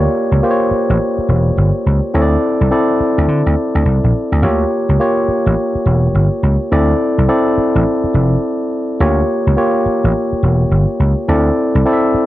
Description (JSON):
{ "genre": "R&B, new jack swing", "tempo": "105 BPM", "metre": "4/4", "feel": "swing 63% on 16ths", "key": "unclear", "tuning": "A4 = 440 Hz", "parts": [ { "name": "tine electric piano", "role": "accompaniment", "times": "0.0-12.3 s", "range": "Bb3 to E5", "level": "-15 LUFS", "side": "equal", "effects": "none" }, { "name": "vintage slap bass", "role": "bass", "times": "0.0-12.2 s", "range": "E1 to D3", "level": "-13 LUFS", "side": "equal", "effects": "none" } ], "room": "light reverb", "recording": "dark, warm production", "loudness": "-12 LUFS", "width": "side -15 dB against mid", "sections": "0.0-12.3 A section", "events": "none", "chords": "0.0 A7b9b13 (rootless); 2.1 Bbmaj9#11 (rootless); 4.4 A7b9b13 (rootless); 6.7 D7sus2; 9.0 A7b9b13 (rootless); 11.3 Fmaj7 (rootless)", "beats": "0.42 1.00 1.57 | 2.14 2.71 3.28 3.85 | 4.42 5.00 5.57 6.14 | 6.71 7.28 7.85 8.43 | 9.00 9.57 10.14 10.71 | 11.28 11.85" }